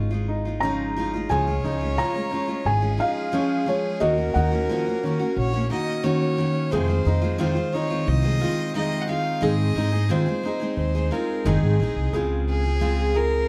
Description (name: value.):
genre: acoustic folk duo or small band.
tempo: 89 BPM.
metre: 4/4.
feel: straight.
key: Db major.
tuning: A4 = 439 Hz.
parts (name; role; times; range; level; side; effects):
felt-muted upright piano; melody; 0.0-6.3 s; Db5 to Db6; -29 LUFS; equal; none.
picked steel-string acoustic guitar; accompaniment; 0.0-13.5 s; F2 to Ab4; -28 LUFS; equal; none.
clear upright piano; arpeggios; 0.0-13.5 s; F3 to Ab4; -33 LUFS; equal; none.
upright bass; bass; 0.0-13.4 s; Gb1 to Ab2; -26 LUFS; equal; none.
clear fiddle; second line; 1.3-13.5 s; Ab4 to Gb5; -31 LUFS; equal; none.
room: light reverb.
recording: dark, warm production.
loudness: -23 LUFS.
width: mono.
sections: 0.0-1.3 A section; 1.3-12.1 B section; 12.1-13.5 C section.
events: fiddle solo 12.1-13.5.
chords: 0.0 Dbadd9; 4.0 Ebm7; 6.7 Fm7; 9.4 Ab; 12.1 Dbmaj7.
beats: 0.62 | 1.30 1.98 2.66 3.34 | 4.01 4.69 5.37 6.05 | 6.72 7.40 8.07 8.75 | 9.42 10.10 10.77 11.45 | 12.12 12.80 13.47.